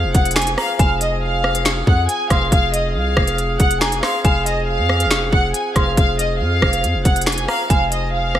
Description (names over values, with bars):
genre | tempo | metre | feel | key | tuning
hip hop, drill | 139 BPM | 4/4 | half-time | F phrygian | A4 = 440 Hz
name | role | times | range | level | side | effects
dark studio violin section | melody | 0.0-8.4 s | Eb5 to Ab5 | -20 LUFS | left 1 dB | none
warm woodwind section | sustained chords | 0.0-8.4 s | F3 to Ab4 | -26 LUFS | right 2 dB | none
long sustained 808-style bass | bass | 0.0-8.4 s | F1 to F2 | -22 LUFS | equal | none
drill drum kit | drums | 0.1-8.4 s | finger snaps, hi-hat, kick drum, rim click, snare drum | -17 LUFS | equal | gated reverb
dark detuned synth bell | second line | 0.6-8.4 s | Ab5 to C6 | -26 LUFS | right 1 dB | chorus, digital delay
room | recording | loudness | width
light reverb | bright 1980s-style digital production, vinyl crackle | -15 LUFS | side -11 dB against mid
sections
0.0-8.4 A section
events
none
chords
0.0 Fm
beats
0.36 | 0.79 1.23 1.66 2.09 | 2.52 2.95 3.38 3.82 | 4.25 4.68 5.11 5.54 | 5.97 6.41 6.84 7.27 | 7.70 8.13